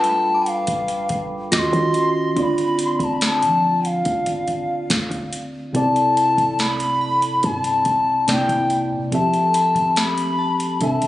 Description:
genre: contemporary R&B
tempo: 71 BPM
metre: 4/4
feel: straight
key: D dorian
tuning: A4 = 439 Hz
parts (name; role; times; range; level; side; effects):
- bright reedy bansuri; melody; 0.0-11.1 s; F5 to D6; -19 LUFS; left 2 dB; none
- mellow tine electric piano; accompaniment; 0.0-11.1 s; C3 to F5; -23 LUFS; right 1 dB; wide subtle chorus
- clean 808-style bass; bass; 0.0-11.1 s; F1 to F3; -28 LUFS; equal; none
- booming analog drum machine; drums; 0.0-11.1 s; hi-hat, kick drum, snare drum; -26 LUFS; equal; none
- glassy synth bell; texture; 0.0-11.1 s; G5 to Bb6; -32 LUFS; left 1 dB; chorus, tape echo
room: light reverb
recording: recorded on a phone in the room, club reverb, nothing above 10.6 kHz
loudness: -17 LUFS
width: side -15 dB against mid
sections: 0.0-11.1 A section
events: none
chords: 0.0 G9; 1.5 Ebm7; 2.4 Dm7; 5.7 C69; 8.3 C9; 9.1 Fmaj7

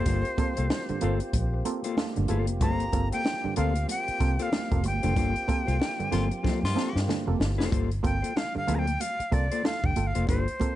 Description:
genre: funk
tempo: 94 BPM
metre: 4/4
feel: swing 60% on 16ths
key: G minor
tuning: A4 = 440 Hz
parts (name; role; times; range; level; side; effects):
- breathy bright jazz flute; melody; 0.0-10.8 s; C5 to Bb5; -32 LUFS; equal; none
- mellow electric guitar; accompaniment; 0.0-10.6 s; Bb3 to C5; -34 LUFS; left 7 dB; none
- tonewheel organ; sustained chords; 0.0-7.7 s; Bb3 to G4; -38 LUFS; left 1 dB; slow rotary speaker, overdrive, chorus vibrato
- vintage muted fingered electric bass; bass; 0.0-10.5 s; F1 to G2; -28 LUFS; equal; none
- muted clav; stabs; 0.1-10.8 s; G2 to A4; -33 LUFS; right 5 dB; none
- compact cocktail drum kit; drums; 0.1-10.8 s; hi-hat, kick drum, snare drum; -30 LUFS; equal; none
- congas; percussion; 0.1-10.8 s; none; -37 LUFS; right 5 dB; none
- breathy baritone saxophone; second line; 6.1-7.0 s; F4; -36 LUFS; left 4 dB; none
room: small room ambience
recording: nothing above 10.5 kHz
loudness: -24 LUFS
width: side -14 dB against mid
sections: 0.0-7.7 A section; 7.7-10.8 B section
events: band accent 5.2-7.7; drum fill 6.4-7.7; flute solo 7.7-10.8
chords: 0.0 Gm11

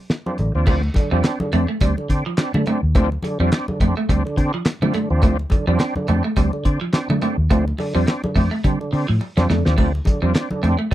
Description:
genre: funk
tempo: 105 BPM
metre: 4/4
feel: swing 56% on 16ths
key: D minor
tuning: A4 = 436 Hz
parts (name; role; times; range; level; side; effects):
- cloth-damped thuddy drum kit; drums; 0.1-10.9 s; crash cymbal, handclaps, hi-hat, kick drum, snare drum, splash cymbal; -18 LUFS; equal; none
- congas; percussion; 0.1-10.9 s; none; -29 LUFS; equal; none
- overdriven tonewheel organ; stabs; 0.3-10.9 s; D3 to D4; -24 LUFS; right 2 dB; chorus vibrato, slow rotary speaker
- vintage muted fingered electric bass; bass; 0.4-10.9 s; A1 to D3; -20 LUFS; equal; none
- clean electric guitar; riff; 0.7-10.9 s; F3 to A3; -24 LUFS; right 3 dB; wide subtle chorus
room: little or no reverb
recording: dry, close 1970s-style studio recording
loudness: -17 LUFS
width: side -14 dB against mid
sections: 0.7-10.9 A section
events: drum fill 9.2-9.8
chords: 0.0 Dm7

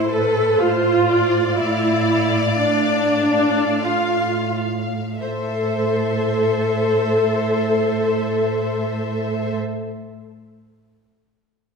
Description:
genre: classical, slow romantic movement for symphony orchestra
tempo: 41-61 BPM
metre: 3/4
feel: rubato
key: A minor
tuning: A4 = 440 Hz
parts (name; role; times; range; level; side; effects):
- dark studio violin section; melody; 0.0-9.6 s; C5 to F5; -30 LUFS; left 4 dB; none
- clear studio violin section; second line; 0.0-9.6 s; B4 to F5; -26 LUFS; left 4 dB; none
- dark studio viola section; accompaniment; 0.0-9.6 s; D4 to A4; -19 LUFS; equal; none
- dark studio cello section; bass; 0.0-9.6 s; A2; -24 LUFS; right 4 dB; none
room: wet concert hall reverb, RT60 1.9 s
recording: minimal, uncompressed stereo recording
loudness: -17 LUFS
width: side -5 dB against mid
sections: 0.0-5.2 A section; 5.2-8.9 B section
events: slowing down 0.0-5.2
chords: 0.0 Am; 1.6 Dm/A; 5.2 Am

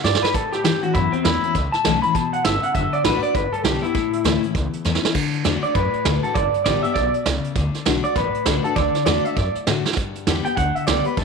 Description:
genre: rockabilly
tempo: 199 BPM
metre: 4/4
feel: swing 61% on 8ths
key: D major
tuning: A4 = 440 Hz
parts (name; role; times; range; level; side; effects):
- electric guitar through a small old amp; melody; 0.0-11.2 s; C4 to B5; -22 LUFS; equal; spring reverb, tape echo
- picked steel-string acoustic guitar; accompaniment; 0.0-11.2 s; E2 to G4; -25 LUFS; left 11 dB; none
- upright bass; bass; 0.0-11.2 s; F#1 to A2; -26 LUFS; equal; none
- vintage brush drum kit; drums; 0.0-11.2 s; crash cymbal, hi-hat, kick drum, snare drum; -23 LUFS; right 6 dB; none
room: light reverb, studio reverb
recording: 1960s-style stereo with parts hard left and right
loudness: -18 LUFS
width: side -5 dB against mid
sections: 0.0-5.2 A section; 5.2-11.2 A section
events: drum fill 0.0-0.3, 4.9, 9.8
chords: 0.3 A; 2.7 D; 3.3 G; 3.9 A; 5.2 D; 6.4 G; 7.6 D; 10.0 G

